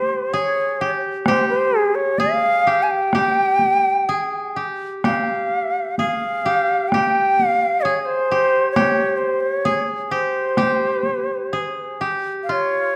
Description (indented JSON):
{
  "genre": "japanese traditional, Japanese chamber music",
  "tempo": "61-67 BPM",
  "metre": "2/4",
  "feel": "rubato",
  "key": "unclear",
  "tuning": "A4 = 438 Hz",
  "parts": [
    { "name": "shakuhachi", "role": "melody", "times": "0.0-13.0 s", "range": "C5 to Ab5", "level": "-21 LUFS", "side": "equal", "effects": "none" },
    { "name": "koto", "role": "second line", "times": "0.0-13.0 s", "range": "F4 to Ab4", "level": "-25 LUFS", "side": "equal", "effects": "none" },
    { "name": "solo taiko drums", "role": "percussion", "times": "1.3-11.3 s", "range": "none", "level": "-27 LUFS", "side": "equal", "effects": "none" }
  ],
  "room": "moderate concert hall reverb, RT60 1.7 s",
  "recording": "none",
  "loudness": "-20 LUFS",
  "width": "mono",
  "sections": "0.0-12.5 A section",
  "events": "none",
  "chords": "none",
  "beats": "0.34 | 1.26 2.19 | 3.12 4.08 | 5.04 5.99 | 6.94 7.87 | 8.78 9.68 | 10.58 11.53 | 12.50"
}